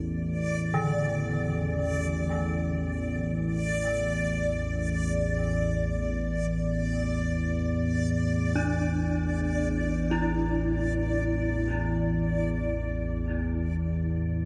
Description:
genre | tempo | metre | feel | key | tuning
dark ambient drone | free time | none | none | unclear | A4 = 440 Hz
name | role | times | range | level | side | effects
analog drone | drone | 0.0-14.5 s | A1 to E2 | -30 LUFS | equal | chorus
backwards swelling texture | texture | 0.2-14.5 s | D5 | -36 LUFS | equal | built-in reverb, lush chorus
gamelan-type bronze metallophone | arpeggios | 0.7-14.5 s | D3 to E4 | -35 LUFS | equal | diffuse ambient delay
room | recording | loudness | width
wet huge ambient reverb, RT60 7.7 s | dreamy mix soaked in reverb | -28 LUFS | mono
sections
0.0-14.5 A section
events
none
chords
0.0 Asus4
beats
free time

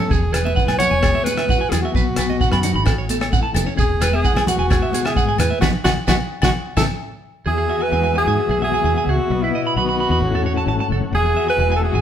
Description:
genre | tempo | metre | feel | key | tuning
highlife guitar band | 130 BPM | 4/4 | straight | E major | A4 = 439 Hz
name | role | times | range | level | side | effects
clear alto saxophone | melody | 0.0-12.0 s | E4 to C#5 | -21 LUFS | right 1 dB | none
clean electric guitar | accompaniment | 0.0-12.0 s | E2 to F#4 | -25 LUFS | left 6 dB | tremolo
electric guitar at the edge of break-up | arpeggios | 0.0-12.0 s | G#4 to B5 | -24 LUFS | right 4 dB | none
congas | percussion | 0.0-6.9 s | none | -27 LUFS | right 2 dB | none
fingered electric bass | bass | 0.1-12.0 s | E1 to G#2 | -22 LUFS | equal | none
damped 70s drum kit | drums | 0.1-6.9 s | hi-hat, kick drum, rim click, snare drum | -21 LUFS | equal | none
shekere | percussion | 0.1-6.9 s | none | -29 LUFS | right 5 dB | none
agogo bells | percussion | 0.3-6.9 s | none | -30 LUFS | left 6 dB | none
combo organ | sustained chords | 7.5-12.0 s | F#4 to F#5 | -29 LUFS | left 2 dB | none
room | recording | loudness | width
moderate large studio reverb, RT60 1.0 s | band playing live in one room | -16 LUFS | side -9 dB against mid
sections
0.0-7.5 A section; 7.5-12.0 B section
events
drum fill 5.6-7.5; band accent 5.6-7.5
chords
0.1 Eadd9; 2.0 B; 2.9 A6; 3.8 Eadd9; 5.6 B; 6.5 A; 7.5 Eadd9; 9.3 B; 10.2 A6; 11.1 Eadd9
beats
| 0.11 0.57 1.03 1.49 | 1.95 2.41 2.87 3.33 | 3.79 4.25 4.71 5.17 | 5.63 6.09 6.55 7.01 | 7.47 7.92 8.38 8.85 | 9.30 9.76 10.22 10.68 | 11.14 11.60

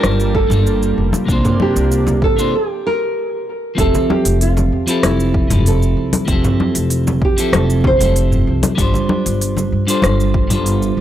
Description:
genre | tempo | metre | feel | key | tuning
sunset chillout | 96 BPM | 4/4 | straight | unclear | A4 = 440 Hz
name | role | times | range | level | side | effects
nylon-string guitar | melody | 0.0-8.4 s | E4 to C5 | -20 LUFS | right 2 dB | vintage 12-bit sampler grit, analog delay
clean electric guitar | accompaniment | 0.0-11.0 s | C3 to A5 | -19 LUFS | right 1 dB | auto-pan, analog delay
lush unison pad | sustained chords | 0.0-2.5 s | C3 to A5 | -28 LUFS | right 1 dB | chorus
upright bass | bass | 0.0-11.0 s | F1 to G2 | -18 LUFS | equal | none
deep house drum kit | drums | 0.0-10.9 s | hi-hat, rim click, shaker, toms | -20 LUFS | equal | none
congas | percussion | 0.0-10.6 s | none | -22 LUFS | left 3 dB | none
electronic kick drum | drums | 0.3-10.5 s | none | -18 LUFS | equal | none
room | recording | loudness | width
digital ambience | dry, gritty hardware recording | -13 LUFS | side -11 dB against mid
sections
0.0-3.8 A section; 3.8-11.0 B section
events
break 2.5-3.8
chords
0.0 Gm9; 1.3 C9sus4; 3.8 Fmaj7; 8.8 G7sus4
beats
0.03 0.66 | 1.28 1.91 2.53 3.16 | 3.78 4.41 5.03 5.66 | 6.28 6.91 7.53 8.16 | 8.78 9.41 10.03 10.66

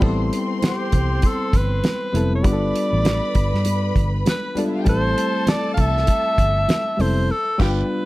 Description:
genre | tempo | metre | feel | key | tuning
lush 1970s-style soul | 99 BPM | 4/4 | swing 58% on 16ths | A minor | A4 = 440 Hz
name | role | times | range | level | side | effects
warm studio string section | second line | 0.0-7.8 s | C4 to C6 | -30 LUFS | equal | none
reed electric piano | accompaniment | 0.0-8.1 s | G3 to A4 | -24 LUFS | left 2 dB | none
vintage muted fingered electric bass | bass | 0.0-7.8 s | F1 to G2 | -21 LUFS | equal | none
damped 70s drum kit | drums | 0.0-7.8 s | crash cymbal, hi-hat, kick drum, snare drum, splash cymbal | -20 LUFS | equal | none
congas | percussion | 0.0-7.2 s | none | -31 LUFS | right 3 dB | none
bright alto saxophone | melody | 0.7-8.1 s | G4 to F5 | -24 LUFS | equal | none
room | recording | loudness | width
studio reverb | none | -17 LUFS | side -18 dB against mid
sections
0.0-8.1 A section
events
band accent 7.3-8.1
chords
0.0 Am9; 2.4 G7; 4.9 Am9; 7.3 G7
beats
| 0.02 0.62 1.23 1.84 | 2.44 3.05 3.66 4.26 | 4.87 5.48 6.08 6.69 | 7.29 7.90

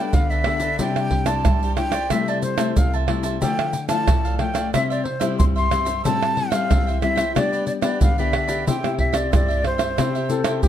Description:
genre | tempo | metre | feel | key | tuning
samba and choro | 91 BPM | 4/4 | straight | C major | A4 = 442 Hz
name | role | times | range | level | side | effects
breathy jazz flute | melody | 0.0-10.7 s | C5 to C6 | -24 LUFS | equal | none
cavaquinho | accompaniment | 0.0-10.7 s | D4 to A5 | -31 LUFS | right 7 dB | none
nylon-string guitar | accompaniment | 0.0-10.7 s | G2 to A4 | -25 LUFS | left 6 dB | none
tube shaker, surdo, pandeiro and tamborim | percussion | 0.1-10.7 s | none | -21 LUFS | right 1 dB | none
breathy trombone | second line | 10.3-10.7 s | G4 to A4 | -24 LUFS | left 6 dB | none
room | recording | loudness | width
light reverb | dark, warm production | -18 LUFS | side -10 dB against mid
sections
0.0-10.7 A section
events
none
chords
0.0 Gadd9; 0.8 Cadd9; 2.1 Am7/C; 3.4 Dmadd9; 4.7 C; 6.0 Am7; 7.4 G; 8.7 C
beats
0.14 | 0.79 1.45 2.11 2.77 | 3.42 4.08 4.74 5.39 | 6.05 6.70 7.36 8.02 | 8.67 9.33 9.98 10.64

